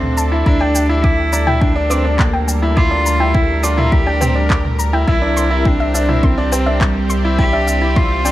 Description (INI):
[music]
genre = piano and strings electronica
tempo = 104 BPM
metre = 4/4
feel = straight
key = unclear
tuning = A4 = 440 Hz
[part]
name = rich cello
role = melody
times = 0.0-8.3 s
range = G3 to G4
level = -20 LUFS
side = equal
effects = none
[part]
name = lush unison pad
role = sustained chords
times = 0.0-8.3 s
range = G3 to E5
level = -24 LUFS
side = right 1 dB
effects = chorus, sidechain pumping
[part]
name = round analog bass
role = bass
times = 0.0-8.3 s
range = C2 to D2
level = -18 LUFS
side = equal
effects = sidechain pumping
[part]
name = minimal click drum kit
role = drums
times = 0.0-8.3 s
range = handclaps, shaker, toms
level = -22 LUFS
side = equal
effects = none
[part]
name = soft round pluck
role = arpeggios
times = 0.2-8.3 s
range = E5 to D6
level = -25 LUFS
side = left 1 dB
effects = chorus, sidechain pumping, tape echo
[part]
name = bright grand piano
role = riff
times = 0.3-8.3 s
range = C4 to E4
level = -21 LUFS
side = equal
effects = none
[part]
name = electronic kick drum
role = drums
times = 0.5-8.1 s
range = none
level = -16 LUFS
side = equal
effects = overdrive
[sound]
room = light reverb, digital ambience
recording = none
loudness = -12 LUFS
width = side -15 dB against mid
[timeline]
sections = 0.0-8.3 A section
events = none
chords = 0.5 Gm/D; 5.1 C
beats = | 0.46 1.04 1.62 2.19 | 2.77 3.35 3.93 4.50 | 5.08 5.66 6.23 6.81 | 7.39 7.96